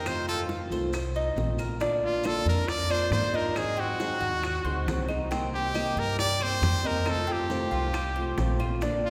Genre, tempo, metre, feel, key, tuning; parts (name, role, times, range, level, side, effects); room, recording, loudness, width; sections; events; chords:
latin, Cuban son and guajira; 137 BPM; 4/4; straight; Bb major; A4 = 440 Hz
brilliant trumpet; melody; 0.0-9.1 s; F4 to D5; -33 LUFS; equal
nylon-string guitar; accompaniment; 0.0-9.1 s; C3 to Ab4; -36 LUFS; equal
Cuban tres; arpeggios; 0.0-9.1 s; C4 to C5; -35 LUFS; equal
upright bass; bass; 0.0-9.1 s; Bb1 to Ab2; -33 LUFS; equal
bongos; percussion; 0.1-9.0 s; -40 LUFS; equal
claves; percussion; 0.1-8.8 s; -48 LUFS; equal
maracas; percussion; 0.1-9.0 s; -51 LUFS; equal
wet church reverb, RT60 3.1 s; recorded in a church or concert hall; -28 LUFS; mono
0.0-1.8 A section; 1.8-9.1 B section
trumpet solo 0.0-1.8
0.1 F7; 1.8 Bb; 3.6 Ab7; 5.3 Cm7; 7.1 F7